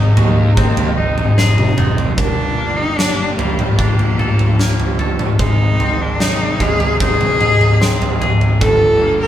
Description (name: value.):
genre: post-rock.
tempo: 75 BPM.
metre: 4/4.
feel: straight.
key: G minor.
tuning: A4 = 438 Hz.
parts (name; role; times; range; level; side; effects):
rich studio string section; sustained chords; 0.0-9.3 s; C3 to G4; -27 LUFS; equal; none.
twangy electric guitar; arpeggios; 0.0-9.3 s; G2 to A4; -25 LUFS; left 1 dB; none.
fuzz fingered electric bass; bass; 0.0-9.3 s; F1 to Eb2; -22 LUFS; equal; overdrive.
felt-muted upright piano; arpeggios; 0.2-9.3 s; A4 to Eb5; -28 LUFS; right 3 dB; none.
huge arena drum kit; drums; 0.2-8.8 s; kick drum, snare drum, toms; -14 LUFS; equal; none.
clear cello; melody; 2.2-9.3 s; Bb3 to Bb4; -18 LUFS; left 1 dB; none.
room: moderate studio ambience, RT60 0.5 s.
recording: band playing live in one room.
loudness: -12 LUFS.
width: side -11 dB against mid.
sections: 0.0-2.2 A section; 2.2-9.3 B section.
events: drum fill 1.4-2.2.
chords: 0.0 Ab; 2.2 Gmadd9; 5.4 Ab; 8.6 Gmadd9.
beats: 0.58 1.38 | 2.18 2.98 3.79 4.59 | 5.39 6.20 7.00 7.80 | 8.61.